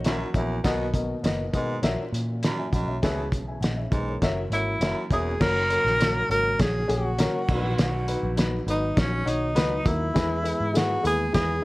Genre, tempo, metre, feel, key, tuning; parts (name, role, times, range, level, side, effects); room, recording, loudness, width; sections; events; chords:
uptempo 1960s-style soul; 101 BPM; 4/4; straight; A4 = 439 Hz
dark upright piano; accompaniment; 0.0-11.5 s; A#2 to G#5; -30 LUFS; left 2 dB
mellow tonewheel organ; sustained chords; 0.0-11.6 s; C#3 to G#4; -37 LUFS; right 1 dB
electric guitar at the edge of break-up; riff; 0.0-0.5 s; D#4 to F#4; -44 LUFS; left 4 dB
vintage muted picked electric bass; bass; 0.0-11.6 s; E1 to B2; -29 LUFS; equal
cloth-damped thuddy drum kit; drums; 0.0-11.5 s; crash cymbal, hi-hat, kick drum, snare drum; -26 LUFS; equal
raspy baritone saxophone; riff; 0.1-5.3 s; E2 to B2; -33 LUFS; right 2 dB
breathy tenor saxophone; melody; 4.5-11.6 s; C#4 to A#4; -26 LUFS; equal
studio reverb; vinyl crackle; -22 LUFS; side -20 dB against mid
0.0-5.4 A section; 5.4-11.6 B section
0.0 F#7; 0.6 Bmaj7; 1.8 F#7/A#; 4.2 F#7; 5.4 F#; 7.5 B; 10.2 E